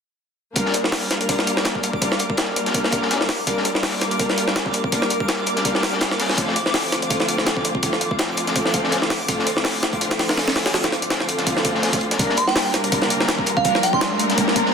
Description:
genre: drum and bass, jungle.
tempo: 165 BPM.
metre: 4/4.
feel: swing 55% on 16ths.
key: G minor.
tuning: A4 = 440 Hz.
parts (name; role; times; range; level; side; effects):
warm studio string section; sustained chords; 0.6-14.7 s; D3 to Bb4; -23 LUFS; equal; low-pass filter.
crunchy breakbeat drum kit; drums; 0.6-14.7 s; hi-hat, snare drum; -27 LUFS; left 4 dB; high-pass filter on hats, high-pass filter on snare, high-pass filter on room.
jungle sampler-style drum kit; drums; 0.6-14.7 s; hi-hat, kick drum, snare drum; -21 LUFS; equal; high-pass filter on kick, high-pass filter on hats, high-pass filter on snare.
twinkling granular texture; texture; 1.3-12.2 s; D6; -31 LUFS; left 1 dB; built-in reverb.
riser; sound effects; 12.8-14.7 s; none; -25 LUFS; equal; none.
glassy synth bell; melody; 12.4-14.4 s; F5 to C6; -22 LUFS; right 3 dB; chorus, dub echo.
room: moderate plate reverb, RT60 1.3 s, small room ambience.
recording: dense, heavily limited modern master.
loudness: -18 LUFS.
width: side -6 dB against mid.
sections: 0.6-12.2 A section; 12.2-14.7 B section.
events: build-up 12.2-14.7; riser 12.8-14.7.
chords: 0.6 Gm7; 6.4 Dm7; 12.2 Gm7.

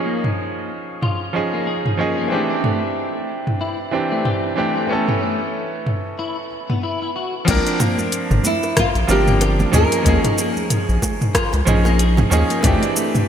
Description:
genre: sunset chillout.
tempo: 93 BPM.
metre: 4/4.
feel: swing 58% on 16ths.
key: unclear.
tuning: A4 = 441 Hz.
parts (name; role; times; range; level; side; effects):
bright baby grand piano; accompaniment; 0.0-13.3 s; E3 to Bb4; -21 LUFS; right 1 dB; auto-pan, digital delay.
clean electric guitar; arpeggios; 0.0-13.1 s; A3 to Ab4; -26 LUFS; left 3 dB; ensemble chorus, low-pass filter, digital delay.
deep house drum kit; drums; 0.2-13.3 s; crash cymbal, hi-hat, rim click, shaker, toms; -22 LUFS; equal; overdrive, gated reverb.
round analog bass; bass; 7.5-12.8 s; G1 to Eb2; -17 LUFS; equal; none.
electronic kick drum; drums; 7.5-12.8 s; none; -22 LUFS; left 1 dB; overdrive.
bongos and congas; percussion; 7.5-13.3 s; none; -28 LUFS; right 2 dB; none.
nylon-string guitar; melody; 8.5-10.4 s; E4 to Bb4; -21 LUFS; equal; wide subtle chorus, digital delay.
room: moderate lush hall reverb, RT60 2.7 s.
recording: bright 1980s-style digital production.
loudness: -17 LUFS.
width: side -8 dB against mid.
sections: 0.0-7.5 A section; 7.5-13.3 B section.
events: none.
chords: 0.0 Eb9sus4; 2.3 D9sus4; 4.9 B9sus4; 7.5 C9sus4; 9.7 Eb9sus4; 12.6 D9sus4.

